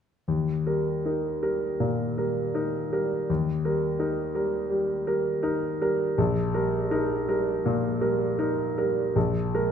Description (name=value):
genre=classical, romantic character piece for solo piano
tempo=81 BPM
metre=4/4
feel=uneven beats, rubato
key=Eb major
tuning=A4 = 440 Hz
part: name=clear concert grand piano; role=solo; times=0.3-9.7 s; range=Bb1 to Bb4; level=-24 LUFS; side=equal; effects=none
room=moderate recital hall reverb, RT60 1.3 s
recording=none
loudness=-24 LUFS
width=side -8 dB against mid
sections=0.3-9.7 A section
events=none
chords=0.3 Eb; 6.2 Eb/Bb; 9.2 Bb7(no3)